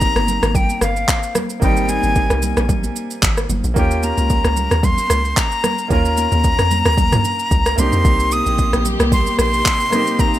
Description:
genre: amapiano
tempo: 112 BPM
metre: 4/4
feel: swing 55% on 16ths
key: Ab major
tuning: A4 = 440 Hz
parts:
  - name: breathy bright jazz flute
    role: melody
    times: 0.0-10.4 s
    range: F5 to Eb6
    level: -20 LUFS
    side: left 1 dB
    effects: ping-pong delay
  - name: clear baby grand piano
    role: accompaniment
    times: 0.0-10.4 s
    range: G3 to Bb4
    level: -24 LUFS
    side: right 1 dB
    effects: none
  - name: deep log drum bass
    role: bass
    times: 0.0-9.6 s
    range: G1 to F2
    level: -20 LUFS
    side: equal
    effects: none
  - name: deep house drum kit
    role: drums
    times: 0.0-10.4 s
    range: handclaps, kick drum, rim click, shaker, toms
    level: -18 LUFS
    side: equal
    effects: overdrive
  - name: congas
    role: percussion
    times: 0.2-10.1 s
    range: none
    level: -27 LUFS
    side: equal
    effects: none
  - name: warm studio string section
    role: sustained chords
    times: 8.0-10.4 s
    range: C3 to G4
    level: -24 LUFS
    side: left 1 dB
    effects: none
room: little or no reverb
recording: none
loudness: -14 LUFS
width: side -13 dB against mid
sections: 0.0-10.4 A section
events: none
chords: 0.0 Abmaj9; 3.8 Eb9; 7.8 Cm7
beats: 0.01 0.55 1.08 | 1.62 2.16 2.69 3.23 | 3.76 4.30 4.83 5.37 | 5.91 6.44 6.98 7.51 | 8.05 8.58 9.12 9.66 | 10.19

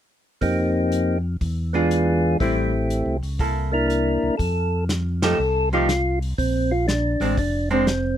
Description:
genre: soul jazz organ trio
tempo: 121 BPM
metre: 4/4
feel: swing 67% on 8ths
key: F major, F mixolydian from 4.4 s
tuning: A4 = 440 Hz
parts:
  - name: percussive tonewheel organ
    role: melody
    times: 0.4-8.2 s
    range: A3 to Bb4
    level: -22 LUFS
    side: equal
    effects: slow rotary speaker
  - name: tonewheel organ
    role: bass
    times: 0.4-8.2 s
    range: F1 to F2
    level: -24 LUFS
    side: equal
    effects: slow rotary speaker
  - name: warm soul drum kit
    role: drums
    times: 0.4-8.0 s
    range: hi-hat, kick drum, ride cymbal, snare drum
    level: -28 LUFS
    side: equal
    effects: none
  - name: archtop guitar, miked and amplified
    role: accompaniment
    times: 1.7-7.9 s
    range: E3 to A4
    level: -24 LUFS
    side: right 3 dB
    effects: none
room: little or no reverb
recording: none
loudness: -19 LUFS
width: side -10 dB against mid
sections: 0.4-4.4 A section; 4.4-8.2 B section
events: band accent 5.1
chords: 0.4 F9sus4; 1.4 E7b9; 2.4 Am7; 3.4 C13; 4.4 F9; 6.4 Bb9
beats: | 0.41 0.91 1.41 1.91 | 2.40 2.90 3.40 3.90 | 4.39 4.89 5.39 5.88 | 6.38 6.88 7.37 7.87

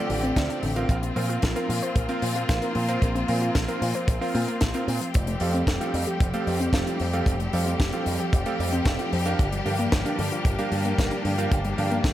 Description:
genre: italo disco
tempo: 113 BPM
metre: 4/4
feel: straight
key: F major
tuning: A4 = 440 Hz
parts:
  - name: clear symphonic string section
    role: sustained chords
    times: 0.0-12.1 s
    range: F3 to G4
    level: -30 LUFS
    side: left 2 dB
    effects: none
  - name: warbly dusty pluck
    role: arpeggios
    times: 0.0-12.1 s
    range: D3 to C5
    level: -31 LUFS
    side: left 2 dB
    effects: chorus, digital delay
  - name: clear electric grand piano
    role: stabs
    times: 0.0-12.1 s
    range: C4 to F5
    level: -30 LUFS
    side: right 3 dB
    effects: digital delay
  - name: picked electric bass with an envelope filter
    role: bass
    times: 0.1-12.1 s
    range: F1 to Bb2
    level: -29 LUFS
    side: equal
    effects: none
  - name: tight funk drum kit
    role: drums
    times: 0.1-12.1 s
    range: hi-hat, snare drum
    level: -32 LUFS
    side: left 1 dB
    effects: gated reverb
  - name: kick drum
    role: drums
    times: 0.4-12.1 s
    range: none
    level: -23 LUFS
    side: equal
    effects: none
room: light reverb, small room ambience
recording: none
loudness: -22 LUFS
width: side -13 dB against mid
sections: 0.0-12.1 A section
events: none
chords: 0.0 Dm7; 0.9 Bbsus2; 5.1 Fadd9; 9.4 Gm7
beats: 0.36 | 0.90 1.43 1.96 2.49 | 3.02 3.55 4.08 4.61 | 5.14 5.67 6.21 6.74 | 7.27 7.80 8.33 8.86 | 9.39 9.92 10.45 10.98 | 11.52 12.05

